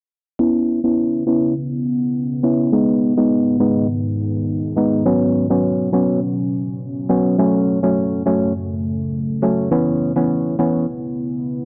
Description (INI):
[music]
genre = dancehall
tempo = 103 BPM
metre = 4/4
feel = straight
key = C# minor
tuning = A4 = 440 Hz
[part]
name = percussive organ stab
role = accompaniment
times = 0.4-10.9 s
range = E3 to E4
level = -18 LUFS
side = equal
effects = chorus, low-pass filter
[part]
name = deep dark ambient pad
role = sustained chords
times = 1.0-11.7 s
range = F#2 to E4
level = -24 LUFS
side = equal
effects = chorus, built-in reverb, low-pass filter
[sound]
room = light reverb, digital ambience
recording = dry, gritty hardware recording, transformer saturation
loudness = -19 LUFS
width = mono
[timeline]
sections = 0.4-11.7 A section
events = filter sweep 0.4-11.7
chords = 0.4 C#m7; 2.7 G#m; 5.1 Bsus2; 7.4 F#m; 9.7 C#m7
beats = | 0.40 0.98 1.56 2.14 | 2.73 3.31 3.89 4.47 | 5.06 5.64 6.22 6.80 | 7.39 7.97 8.55 9.13 | 9.72 10.30 10.88 11.46